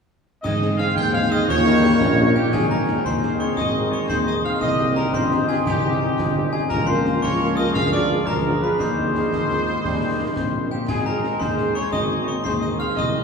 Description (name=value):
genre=military-style march for wind band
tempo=115 BPM (dotted quarters)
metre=6/8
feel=straight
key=Ab major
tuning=A4 = 440 Hz
part: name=clear trumpet section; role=melody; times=0.4-13.2 s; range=G4 to G5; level=-26 LUFS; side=equal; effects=none
part: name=glockenspiel with brass mallets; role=second line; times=0.4-13.2 s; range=G5 to G6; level=-27 LUFS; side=left 3 dB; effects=none
part: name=warm woodwind section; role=second line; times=0.4-13.2 s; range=G4 to Ab5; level=-32 LUFS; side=right 1 dB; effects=none
part: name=clear trombone section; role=sustained chords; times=0.4-13.2 s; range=Eb3 to C4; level=-29 LUFS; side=right 1 dB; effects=none
part: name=mellow tuba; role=bass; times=0.4-13.2 s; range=G1 to Ab2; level=-23 LUFS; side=equal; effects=none
part: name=concert snare drum, clash cymbals and concert bass drum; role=drums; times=0.4-13.1 s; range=none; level=-28 LUFS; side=left 1 dB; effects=none
part: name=dark French horn section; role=accompaniment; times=0.6-13.2 s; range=Bb3 to Bb4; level=-29 LUFS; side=left 1 dB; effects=none
part: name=mellow euphonium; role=second line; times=1.0-2.3, 9.3-10.8 s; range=Eb3 to F4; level=-31 LUFS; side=right 1 dB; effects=none
room=wet cathedral reverb, RT60 5.0 s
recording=recorded in a church or concert hall, small room ambience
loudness=-18 LUFS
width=side -5 dB against mid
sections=0.4-2.5 A section; 2.5-13.2 B section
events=none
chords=0.4 Ab; 1.5 Eb7; 2.5 Ab; 4.6 Cm; 6.7 Bbm/Db; 7.8 Ddim7; 8.8 Ab/Eb; 9.8 Eb; 10.9 Ab